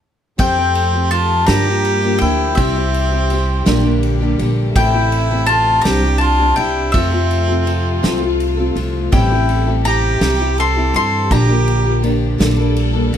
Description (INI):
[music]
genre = acoustic folk duo or small band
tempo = 55 BPM (dotted quarters)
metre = 6/8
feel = straight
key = unclear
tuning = A4 = 442 Hz
[part]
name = mandolin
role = melody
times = 0.4-12.1 s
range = E5 to C6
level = -19 LUFS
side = left 3 dB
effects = none
[part]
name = warm harmonica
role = second line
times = 0.4-12.1 s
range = C4 to A4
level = -21 LUFS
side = right 4 dB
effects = none
[part]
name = picked steel-string acoustic guitar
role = accompaniment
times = 0.4-13.2 s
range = G2 to A4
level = -21 LUFS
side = left 2 dB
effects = none
[part]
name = warm studio string section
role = sustained chords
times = 0.4-13.2 s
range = C3 to E5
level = -26 LUFS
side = left 4 dB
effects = none
[part]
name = upright bass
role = bass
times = 0.4-13.2 s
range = A1 to G2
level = -17 LUFS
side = right 1 dB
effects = none
[part]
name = unplugged drum kit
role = drums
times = 0.4-13.2 s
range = kick drum, ride cymbal, snare drum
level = -23 LUFS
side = right 1 dB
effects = none
[sound]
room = light reverb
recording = close, detailed microphones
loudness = -13 LUFS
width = side -9 dB against mid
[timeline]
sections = 0.4-13.2 A section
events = stop 0.0-0.4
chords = 0.4 Fadd9; 1.5 Gm7; 2.6 C; 3.7 Gm/Bb; 4.8 Am; 5.8 Csus2; 6.9 F; 9.1 Am7; 10.2 C; 11.3 Bb6; 12.4 Gmadd9/Bb